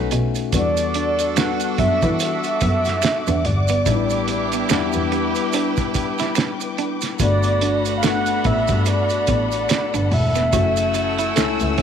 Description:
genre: R&B, neo-soul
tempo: 72 BPM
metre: 4/4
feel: swing 58% on 16ths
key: E dorian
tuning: A4 = 437 Hz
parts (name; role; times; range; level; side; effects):
- mellow horn-like synth lead; melody; 0.0-11.8 s; D5 to F#5; -22 LUFS; equal; chorus
- tine electric piano; accompaniment; 0.0-11.8 s; G3 to A4; -25 LUFS; left 14 dB; lush chorus
- bright saxophone section; stabs; 0.0-11.8 s; A3 to B4; -29 LUFS; right 12 dB; none
- clear double bass; bass; 0.0-11.8 s; E1 to E3; -22 LUFS; equal; none
- clean electric guitar; second line; 0.1-11.8 s; A3 to F#4; -27 LUFS; right 12 dB; wide subtle chorus
- cloth-damped thuddy drum kit; drums; 0.1-11.8 s; hi-hat, kick drum, snare drum; -24 LUFS; right 4 dB; none
- maracas and finger snaps; percussion; 0.1-11.8 s; none; -31 LUFS; right 14 dB; none
- muted studio string section; sustained chords; 0.5-11.8 s; F#4 to E6; -29 LUFS; left 5 dB; none
room: light reverb, studio reverb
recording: 1960s-style stereo with parts hard left and right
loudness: -17 LUFS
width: side -8 dB against mid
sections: 0.0-11.8 A section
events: none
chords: 0.0 B7; 0.5 Em9; 3.9 A9sus4; 7.2 Gmaj9; 10.5 F#m7

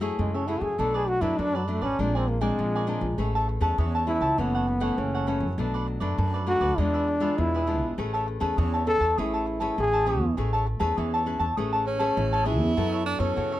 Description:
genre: samba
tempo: 100 BPM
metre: 4/4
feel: straight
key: A major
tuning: A4 = 437 Hz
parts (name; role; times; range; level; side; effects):
- cavaquinho; accompaniment; 0.0-13.6 s; D4 to A5; -30 LUFS; equal; none
- nylon-string guitar; accompaniment; 0.0-13.6 s; F#2 to B4; -31 LUFS; left 4 dB; none
- upright bass; bass; 0.0-13.6 s; F#1 to F#2; -28 LUFS; right 1 dB; none
- warm trombone; melody; 0.2-10.3 s; F#3 to A4; -26 LUFS; equal; none
- breathy tenor saxophone; second line; 11.9-13.6 s; C#4 to E4; -27 LUFS; right 2 dB; none
room: light reverb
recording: close, detailed microphones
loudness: -23 LUFS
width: side -14 dB against mid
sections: 0.0-12.8 A section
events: trombone solo 0.0-12.8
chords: 0.0 F#m9; 0.8 Bm7; 2.0 Bb9; 3.2 Amaj9; 4.4 F#m7; 5.6 Bm7; 6.8 E7b9; 8.0 Amaj9; 12.8 F#m7

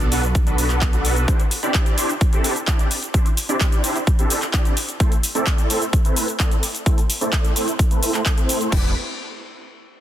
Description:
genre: EDM, festival progressive house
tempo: 129 BPM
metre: 4/4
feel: straight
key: E minor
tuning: A4 = 440 Hz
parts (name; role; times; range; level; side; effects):
- supersaw chords; riff; 0.0-8.9 s; A3 to D5; -24 LUFS; right 1 dB; ensemble chorus, sidechain pumping, low-pass filter, digital delay
- wide detuned saw bass; bass; 0.0-1.3, 8.7-8.9 s; E1 to B1; -22 LUFS; equal; chorus, tube saturation, sidechain pumping
- big-room dance drum kit; drums; 0.0-8.8 s; crash cymbal, handclaps, hi-hat, shaker; -25 LUFS; equal; none
- electronic kick drum; drums; 0.3-8.8 s; none; -18 LUFS; equal; overdrive
room: light reverb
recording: dense, heavily limited modern master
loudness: -17 LUFS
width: side -12 dB against mid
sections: 0.0-8.7 A section; 8.7-10.0 B section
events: filter sweep on supersaw synth 0.0-8.7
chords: 0.0 Bm7; 1.3 Cadd9; 5.0 Am; 8.7 Em7

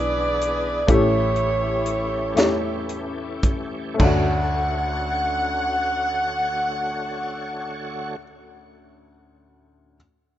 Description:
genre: slow gospel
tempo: 35-44 BPM (dotted quarters)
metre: 6/8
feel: straight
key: D major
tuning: A4 = 440 Hz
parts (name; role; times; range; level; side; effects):
- edgy saxophone section; melody; 0.0-8.2 s; E4 to F#5; -24 LUFS; right 1 dB; none
- warm baby grand piano; accompaniment; 0.0-10.0 s; D2 to B4; -26 LUFS; left 3 dB; none
- bright tonewheel organ; sustained chords; 0.0-8.2 s; D3 to C#5; -33 LUFS; right 2 dB; slow rotary speaker, overdrive, chorus vibrato
- hollow-body short-scale fingered electric bass; bass; 0.0-8.2 s; A1 to E2; -29 LUFS; equal; none
- crisp fusion drum kit; drums; 0.4-4.3 s; crash cymbal, hi-hat, kick drum, snare drum, toms; -21 LUFS; right 1 dB; none
room: light reverb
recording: rough home demo mix, nothing above 7.7 kHz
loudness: -20 LUFS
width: side -12 dB against mid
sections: 0.0-4.0 A section; 4.0-7.5 B section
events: slowing down 0.0-4.0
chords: 0.0 E7; 0.9 A7; 4.0 Dmaj7

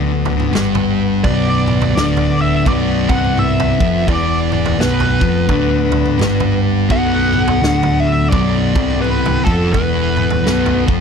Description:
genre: stoner and doom metal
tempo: 85 BPM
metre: 4/4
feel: swing 61% on 8ths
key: B phrygian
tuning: A4 = 440 Hz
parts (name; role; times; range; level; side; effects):
- percussive tonewheel organ; sustained chords; 0.0-11.0 s; B3 to F#5; -28 LUFS; right 1 dB; fast rotary speaker
- thick fuzz guitar; riff; 0.0-11.0 s; B1 to G3; -18 LUFS; left 13 dB; distortion
- thick fuzz guitar; riff; 0.0-11.0 s; B1 to G3; -20 LUFS; right 13 dB; distortion
- overdriven picked electric bass; bass; 0.0-11.0 s; B0 to G1; -20 LUFS; equal; none
- big rock drum kit; drums; 0.3-11.0 s; kick drum, snare drum, toms; -21 LUFS; right 1 dB; none
- fuzz lead guitar; melody; 1.2-10.8 s; A4 to F#5; -20 LUFS; right 1 dB; wah, distortion, slapback echo
room: studio reverb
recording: dry, close 1970s-style studio recording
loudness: -13 LUFS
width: side -6 dB against mid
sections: 0.0-11.0 A section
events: none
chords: 0.0 Bm

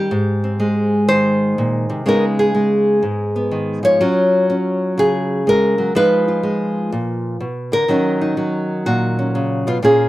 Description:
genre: solo jazz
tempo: 124 BPM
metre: 4/4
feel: swing 66% on 8ths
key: Eb minor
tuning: A4 = 440 Hz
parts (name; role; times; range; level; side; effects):
- nylon-string guitar; solo; 0.0-10.1 s; Ab2 to Db5; -15 LUFS; equal; none
room: light reverb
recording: none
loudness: -15 LUFS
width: side -16 dB against mid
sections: 0.0-10.1 A section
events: none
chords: 0.1 Abmaj9; 2.0 Db7sus2; 4.0 Gbmaj7; 5.9 Fm7b5; 6.9 Bb; 7.9 Ebm7

